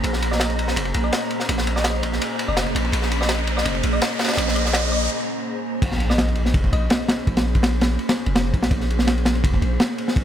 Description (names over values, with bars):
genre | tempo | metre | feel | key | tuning
drum and bass, jungle | 166 BPM | 4/4 | straight | Bb minor | A4 = 440 Hz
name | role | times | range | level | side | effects
long sustained 808-style bass | bass | 0.0-10.2 s | F1 to Bb1 | -23 LUFS | equal | none
crunchy breakbeat drum kit | drums | 0.0-10.2 s | crash cymbal, kick drum, ride cymbal, snare drum | -22 LUFS | equal | high-pass filter on kick, high-pass filter on cymbals, high-pass filter on snare, high-pass filter on room
riser and impact | sound effects | 1.5-7.3 s | none | -31 LUFS | right 1 dB | none
wind-like tuned noise texture | texture | 0.0-5.1 s | Bb5 | -34 LUFS | right 2 dB | built-in reverb
thumb-piano-like synth pluck | melody | 0.3-7.2 s | Eb5 | -29 LUFS | left 2 dB | chorus, dub echo
room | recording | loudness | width
light reverb, small room reverb | none | -18 LUFS | side -10 dB against mid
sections
0.0-5.8 A section; 5.8-10.2 B section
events
build-up 0.0-5.8; filter sweep on synth pluck 0.0-5.8; riser 1.5-5.1; break 5.1-5.8; drop 5.8-10.2; impact 5.8-7.3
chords
0.0 Bbm9